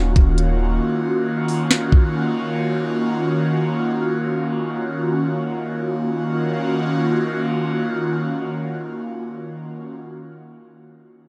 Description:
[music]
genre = hip hop, atmospheric cloud-rap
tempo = free time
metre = none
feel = none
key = Eb minor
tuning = A4 = 440 Hz
[part]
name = airy breathy pad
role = sustained chords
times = 0.0-9.9 s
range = Eb3 to Gb4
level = -23 LUFS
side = equal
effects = chorus, phaser, sidechain pumping
[part]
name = concert harp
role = arpeggios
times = 0.0-2.0 s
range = none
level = barely audible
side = none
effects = none
[part]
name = soft 808-style bass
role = bass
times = 0.0-0.8 s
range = Eb1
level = -22 LUFS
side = equal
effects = none
[part]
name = trap drum kit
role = drums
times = 0.2-2.0 s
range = hi-hat, kick drum, snare drum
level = -16 LUFS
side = equal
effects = none
[sound]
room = little or no reverb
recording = dark, warm production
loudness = -21 LUFS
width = mono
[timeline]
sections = 0.0-6.1 A section; 6.1-9.6 B section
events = none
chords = 0.0 Ebm9

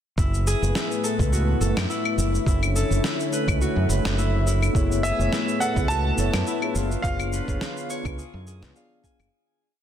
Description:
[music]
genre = sunset chillout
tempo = 105 BPM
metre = 4/4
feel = swing 55% on 16ths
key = F# minor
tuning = A4 = 440 Hz
[part]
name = lush unison pad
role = sustained chords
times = 0.2-9.3 s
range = A2 to E#4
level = -28 LUFS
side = left 1 dB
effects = chorus
[part]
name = Celtic harp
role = arpeggios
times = 0.2-9.8 s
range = E4 to G#5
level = -30 LUFS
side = left 2 dB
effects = tape echo
[part]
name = modern bright fingered electric bass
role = bass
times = 0.2-9.3 s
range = F#1 to F#2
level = -24 LUFS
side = equal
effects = none
[part]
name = electronic cabasa, snare drum and claves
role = drums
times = 0.2-9.3 s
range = none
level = -30 LUFS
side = left 1 dB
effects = none
[part]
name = electronic kick drum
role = drums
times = 0.2-9.2 s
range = none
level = -25 LUFS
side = equal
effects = none
[part]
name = mellow tine electric piano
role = accompaniment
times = 4.7-9.3 s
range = A3 to A5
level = -30 LUFS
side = moving between left 8 dB and right 6 dB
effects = slow stereo tremolo, auto-pan, vintage 12-bit sampler grit
[part]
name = clear concert grand piano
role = melody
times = 5.0-8.7 s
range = E5 to A5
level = -28 LUFS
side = right 1 dB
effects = tape echo
[sound]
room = light reverb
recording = dense, heavily limited modern master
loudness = -21 LUFS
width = side -10 dB against mid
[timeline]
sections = 0.2-9.3 groove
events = fade-out 6.3-9.3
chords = 0.2 F#m11; 2.2 Bm11/F#; 4.8 F#m11; 6.8 C#7b9/F#

